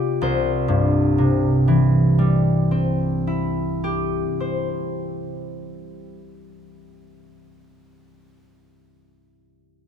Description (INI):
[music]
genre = classical, solo harp piece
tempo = 62 BPM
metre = 3/4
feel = rubato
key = C major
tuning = A4 = 441 Hz
[part]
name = concert harp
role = solo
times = 0.0-7.5 s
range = C2 to D5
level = -18 LUFS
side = equal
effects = none
[sound]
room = light reverb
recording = close, detailed microphones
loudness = -18 LUFS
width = side -8 dB against mid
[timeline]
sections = 0.2-6.0 A section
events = none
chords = 0.2 C